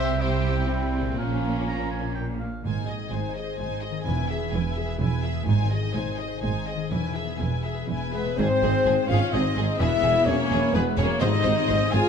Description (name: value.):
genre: cinematic, heroic adventure film score.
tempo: 126 BPM.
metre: 3/4.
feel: straight.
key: unclear.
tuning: A4 = 442 Hz.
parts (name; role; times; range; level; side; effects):
warm symphonic violin section; melody; 0.0-12.0 s; C4 to Ab5; -34 LUFS; left 2 dB; none.
clear clarinet; second line; 0.0-2.4, 8.1-12.1 s; C4 to Ab5; -33 LUFS; left 1 dB; none.
clear oboe; second line; 0.0-2.6 s; F5 to Bb5; -38 LUFS; right 3 dB; none.
mellow hollow silver concert flute; second line; 0.0-2.4, 8.1-12.1 s; B4 to Bb5; -33 LUFS; left 2 dB; none.
rich symphonic violin section; second line; 0.0-12.1 s; G3 to Ab5; -36 LUFS; left 1 dB; none.
rich symphonic viola section; accompaniment; 0.0-12.1 s; G3 to Ab4; -33 LUFS; equal; none.
mellow French horn section; sustained chords; 0.0-2.4, 8.1-12.1 s; F3 to Ab4; -28 LUFS; left 6 dB; none.
concert harp; arpeggios; 0.0-12.1 s; E2 to B5; -33 LUFS; left 11 dB; none.
dark trumpet section; stabs; 0.0-2.2, 8.1-12.1 s; E4 to Ab5; -31 LUFS; equal; none.
clear symphonic double bass section; bass; 0.0-12.0 s; E1 to C2; -29 LUFS; right 4 dB; none.
rich symphonic cello section; bass; 0.0-12.0 s; E2 to C3; -30 LUFS; right 3 dB; none.
timpani; percussion; 2.6-6.2, 11.2-11.9 s; Ab2; -33 LUFS; right 2 dB; none.
warm tuba; bass; 8.4-12.0 s; E1 to Ab1; -31 LUFS; right 5 dB; none.
room: light reverb.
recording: close, detailed microphones.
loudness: -22 LUFS.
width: side -7 dB against mid.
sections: 0.0-2.6 A section; 2.6-8.4 B section; 8.4-12.1 C section.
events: none.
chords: 0.0 C; 1.2 Bbm; 2.6 Ab; 4.1 E; 5.5 Ab; 6.9 E; 8.4 Ab; 9.8 E; 11.2 Ab.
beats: 0.22 0.70 | 1.19 1.67 2.16 | 2.64 3.12 3.60 | 4.07 4.54 5.01 | 5.48 5.96 6.43 | 6.92 7.41 7.89 | 8.38 8.86 9.34 | 9.80 10.27 10.74 | 11.22 11.69.